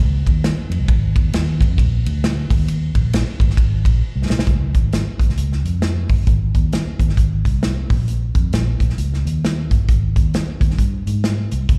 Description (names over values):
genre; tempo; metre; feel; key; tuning
uptempo 1960s-style soul; 133 BPM; 4/4; swing 61% on 8ths; Ab major; A4 = 440 Hz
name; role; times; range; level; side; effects
vintage muted fingered electric bass; bass; 0.0-11.8 s; G1 to Ab2; -21 LUFS; equal; none
warm soul drum kit; drums; 0.3-11.8 s; hi-hat, kick drum, ride cymbal, snare drum; -20 LUFS; equal; none
room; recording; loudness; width
little or no reverb; live gig heard through the venue's PA, recital hall reverb; -18 LUFS; mono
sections
0.0-4.5 A section; 4.5-11.8 B section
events
drum fill 4.0-4.5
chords
none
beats
0.44 | 0.89 1.33 1.78 2.23 | 2.68 3.13 3.57 4.02 | 4.47 4.92 5.37 5.82 | 6.28 6.73 7.18 7.63 | 8.08 8.53 8.98 9.44 | 9.89 10.34 10.79 11.24 | 11.69